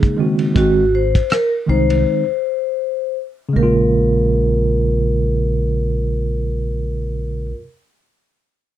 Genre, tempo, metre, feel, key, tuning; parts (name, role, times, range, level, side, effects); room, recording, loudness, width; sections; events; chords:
hip hop, jazz-hop; 80 BPM; 4/4; swing 58% on 16ths; Bb minor; A4 = 440 Hz
vibraphone with hard mallets; melody; 0.0-7.5 s; Gb4 to C5; -20 LUFS; left 1 dB
tine electric piano; accompaniment; 0.0-7.6 s; Db3 to Gb4; -19 LUFS; right 2 dB; overdrive, fast stereo tremolo
cloth-damped thuddy drum kit; drums; 0.0-2.0 s; hi-hat, kick drum, ride cymbal, rim click; -17 LUFS; equal
deep dub fingered electric bass; bass; 0.6-7.5 s; Ab1 to C2; -19 LUFS; equal
light reverb; dry, close 1970s-style studio recording; -15 LUFS; side -11 dB against mid
0.0-3.6 A section; 3.6-6.6 B section
break 2.1-3.6
0.0 Bbm7; 0.6 Ab; 3.6 Bbm7